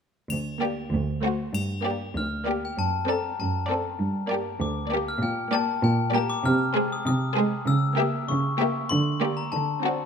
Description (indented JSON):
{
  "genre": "cinematic, playful, whimsical film cue",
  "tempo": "98 BPM",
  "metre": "2/4",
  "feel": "straight",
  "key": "G minor",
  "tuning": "A4 = 440 Hz",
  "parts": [
    { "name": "dark chamber cello section", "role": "bass", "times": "0.3-10.0 s", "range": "D2 to D3", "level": "-27 LUFS", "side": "right 2 dB", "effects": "none" },
    { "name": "triangle", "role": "percussion", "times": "0.3-2.7 s", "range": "none", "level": "-38 LUFS", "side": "left 5 dB", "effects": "none" },
    { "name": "clear chamber violin section", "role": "melody", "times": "0.6-10.1 s", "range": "C5 to E5", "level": "-35 LUFS", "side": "left 4 dB", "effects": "none" },
    { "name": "clear symphonic violin section", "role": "second line", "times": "0.6-10.1 s", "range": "F#4 to A4", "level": "-30 LUFS", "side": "left 2 dB", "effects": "none" },
    { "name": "rich symphonic viola section", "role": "accompaniment", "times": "0.6-10.1 s", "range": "Ab3 to C4", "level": "-30 LUFS", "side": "right 1 dB", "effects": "none" },
    { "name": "glockenspiel with brass mallets", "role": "melody", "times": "2.2-10.1 s", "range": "G5 to F6", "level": "-29 LUFS", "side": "left 5 dB", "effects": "none" }
  ],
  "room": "moderate scoring stage reverb, RT60 1.8 s",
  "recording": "none",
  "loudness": "-23 LUFS",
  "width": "side -6 dB against mid",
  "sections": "0.3-1.5 A section; 1.5-10.1 B section",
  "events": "none",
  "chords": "0.3 Gm/D; 0.9 D7; 1.5 Gm; 2.8 D7/F#; 4.0 Gm; 5.2 Gm/Bb; 6.5 Ab/C; 7.7 C#dim7; 8.9 Gm/D; 9.5 D7",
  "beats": "| 0.30 0.92 | 1.55 2.17 | 2.79 3.40 | 4.01 4.62 | 5.23 5.84 | 6.45 7.06 | 7.67 8.29 | 8.90 9.53"
}